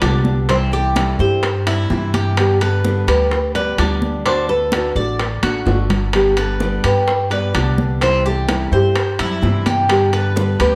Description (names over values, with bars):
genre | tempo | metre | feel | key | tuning
latin, Cuban son and guajira | 128 BPM | 4/4 | straight | G major | A4 = 440 Hz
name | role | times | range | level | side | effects
nylon-string guitar | melody | 0.0-10.8 s | G4 to D5 | -22 LUFS | equal | none
nylon-string guitar | accompaniment | 0.0-10.8 s | C3 to G4 | -26 LUFS | equal | none
Cuban tres | arpeggios | 0.0-10.8 s | C4 to D5 | -26 LUFS | equal | none
upright bass | bass | 0.0-10.8 s | G1 to G2 | -22 LUFS | equal | none
bongos | percussion | 0.0-10.6 s | none | -30 LUFS | equal | none
congas | percussion | 0.0-10.8 s | none | -26 LUFS | equal | none
timbales | percussion | 0.0-10.8 s | none | -28 LUFS | equal | none
room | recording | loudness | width
moderate large studio reverb, RT60 1.2 s | none | -17 LUFS | mono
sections
0.0-10.8 A section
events
drum fill 5.4-6.1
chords
0.5 C; 2.4 Gadd9; 4.3 D; 6.1 Gadd9; 8.0 C; 9.9 Gadd9